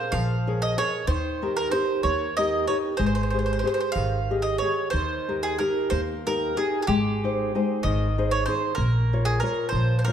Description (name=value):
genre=italian folk, Italian serenade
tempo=63 BPM (dotted quarters)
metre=6/8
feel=rubato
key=Ab major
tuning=A4 = 441 Hz
part: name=bowl-back mandolin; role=melody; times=0.0-10.1 s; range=G4 to F5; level=-27 LUFS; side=right 3 dB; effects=none
part: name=nylon-string guitar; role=accompaniment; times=0.0-10.1 s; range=Eb3 to F5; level=-26 LUFS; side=left 2 dB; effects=none
part: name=upright bass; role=bass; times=0.1-10.1 s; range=Ab1 to Eb2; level=-27 LUFS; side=equal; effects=none
room=moderate recital hall reverb, RT60 1.7 s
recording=dark, warm production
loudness=-22 LUFS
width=side -9 dB against mid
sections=0.0-10.1 A section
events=none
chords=0.0 Bbm7; 1.1 Eb; 3.0 Abmaj7; 4.9 Eb; 6.9 Ab; 8.8 Bbm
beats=0.14 | 1.09 2.04 | 3.00 3.96 | 4.93 5.92 | 6.89 7.84 | 8.78 9.72